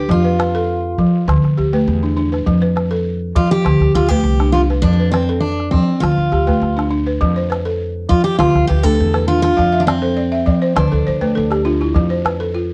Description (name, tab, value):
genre	west african traditional, West African string and xylophone music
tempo	101 BPM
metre	4/4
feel	straight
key	F lydian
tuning	A4 = 440 Hz
part	picked steel-string acoustic guitar	melody	0.0-11.6 s	C4 to A4	-20 LUFS	equal	slapback echo, plate reverb
part	balafon	arpeggios	0.0-12.7 s	D3 to F5	-19 LUFS	equal	none
part	upright bass	bass	0.0-12.7 s	C2 to F3	-22 LUFS	equal	none
part	calabash	percussion	0.1-12.4 s	none	-22 LUFS	equal	none
room	light reverb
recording	worn, warbling old tape, cassette tape, warbly pitch drift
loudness	-16 LUFS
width	mono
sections	0.0-7.2 A section; 7.2-12.7 A section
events	balafon fill 9.6-12.0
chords	0.1 F; 1.3 D5; 2.5 F; 3.7 D5; 4.8 F; 6.0 Dm; 7.2 F; 8.4 D5; 9.6 F; 10.8 D5; 12.0 F